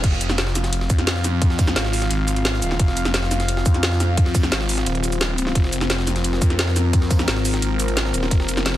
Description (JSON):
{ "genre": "dark technical drum and bass", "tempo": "174 BPM", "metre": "4/4", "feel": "straight", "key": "F minor", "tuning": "A4 = 440 Hz", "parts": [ { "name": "dark analog pad", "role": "sustained chords", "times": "0.2-8.8 s", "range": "C4 to F5", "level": "-26 LUFS", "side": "left 2 dB", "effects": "chorus, sidechain pumping" }, { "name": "phased detuned saw bass", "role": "bass", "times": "0.0-8.8 s", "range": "Eb1 to F2", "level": "-22 LUFS", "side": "equal", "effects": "phaser, tube saturation" }, { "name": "drum and bass drum kit", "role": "drums", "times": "0.0-8.7 s", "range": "crash cymbal, hi-hat, shaker, snare drum", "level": "-24 LUFS", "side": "equal", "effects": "none" }, { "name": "electronic kick drum", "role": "drums", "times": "0.0-8.4 s", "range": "none", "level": "-18 LUFS", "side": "equal", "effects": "none" }, { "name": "jungle sampler-style drum kit", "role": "drums", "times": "0.0-8.8 s", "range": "hi-hat, ride cymbal, snare drum", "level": "-32 LUFS", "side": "right 1 dB", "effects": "none" } ], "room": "light reverb", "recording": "dense, heavily limited modern master", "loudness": "-18 LUFS", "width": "side -13 dB against mid", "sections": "0.0-8.8 A section", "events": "drop 0.0-8.8", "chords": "0.0 F5" }